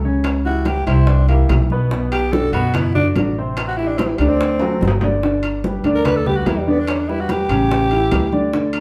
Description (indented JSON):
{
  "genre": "Afro-Cuban jazz",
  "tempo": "145 BPM",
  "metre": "4/4",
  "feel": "straight",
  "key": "unclear",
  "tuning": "A4 = 440 Hz",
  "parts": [
    { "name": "warm concert grand piano", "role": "accompaniment", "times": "0.0-8.8 s", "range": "B2 to D5", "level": "-22 LUFS", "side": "equal", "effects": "none" },
    { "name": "upright bass", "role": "bass", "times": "0.0-8.8 s", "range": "G1 to F#2", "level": "-22 LUFS", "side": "equal", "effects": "none" },
    { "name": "congas", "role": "percussion", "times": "0.0-8.8 s", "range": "none", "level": "-28 LUFS", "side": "equal", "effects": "none" },
    { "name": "bongos", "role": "percussion", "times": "0.2-8.8 s", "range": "none", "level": "-30 LUFS", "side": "equal", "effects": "none" },
    { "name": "timbales", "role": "percussion", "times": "0.2-8.8 s", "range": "none", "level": "-30 LUFS", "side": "equal", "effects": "none" },
    { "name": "growling tenor saxophone", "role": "second line", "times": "0.5-8.5 s", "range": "E3 to B4", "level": "-24 LUFS", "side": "equal", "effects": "none" }
  ],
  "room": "wet large studio reverb, RT60 0.9 s",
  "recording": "band playing live in one room",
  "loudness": "-17 LUFS",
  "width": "mono",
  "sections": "0.0-8.8 A section",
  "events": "tenor saxophone solo 0.0-8.8; drum fill 4.6-5.2",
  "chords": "0.3 C#dim; 1.1 C; 1.9 Bm7; 3.6 Am7; 4.4 D7; 5.2 G6; 6.9 Em7; 7.7 A7"
}